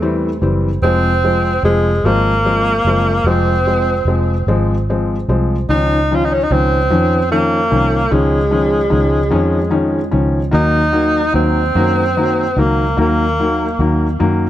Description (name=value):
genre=pop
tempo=50 BPM (dotted quarters)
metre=6/8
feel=straight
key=Db major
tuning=A4 = 435 Hz
part: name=warm tenor saxophone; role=melody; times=0.0-13.9 s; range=Ab3 to F4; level=-17 LUFS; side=right 1 dB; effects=digital delay
part: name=felt-muted upright piano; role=accompaniment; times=0.0-14.5 s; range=Eb3 to Db4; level=-17 LUFS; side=left 2 dB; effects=none
part: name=vintage muted fingered electric bass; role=bass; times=0.0-14.5 s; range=F1 to Gb2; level=-17 LUFS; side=equal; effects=none
room=light reverb, studio reverb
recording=none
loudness=-12 LUFS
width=side -12 dB against mid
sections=0.0-14.5 A section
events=none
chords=0.0 C; 0.8 Fm; 5.7 Dbadd9; 10.5 Ebm